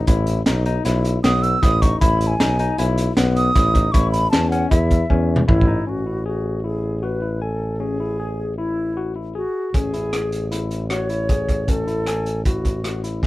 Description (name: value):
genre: progressive instrumental, band music in an uneven meter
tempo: 155 BPM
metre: 5/4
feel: straight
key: A lydian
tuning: A4 = 442 Hz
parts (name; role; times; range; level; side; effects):
- barky tine electric piano; arpeggios; 0.0-13.3 s; B3 to G#5; -26 LUFS; left 6 dB; overdrive
- warm tuba; bass; 0.1-13.3 s; A1 to E2; -22 LUFS; equal; none
- crunchy breakbeat drum kit; drums; 0.1-5.7, 9.7-13.3 s; hi-hat, kick drum, rim click, snare drum, toms; -20 LUFS; equal; none
- baroque flute; melody; 1.2-13.3 s; E4 to E6; -24 LUFS; right 1 dB; none
room: little or no reverb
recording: none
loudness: -17 LUFS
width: side -18 dB against mid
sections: 0.0-5.9 A section; 5.9-13.3 B section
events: flute solo 0.0-5.9; drum fill 5.1-5.9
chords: 0.0 E5/A; 3.9 A; 5.9 Amaj7(no3)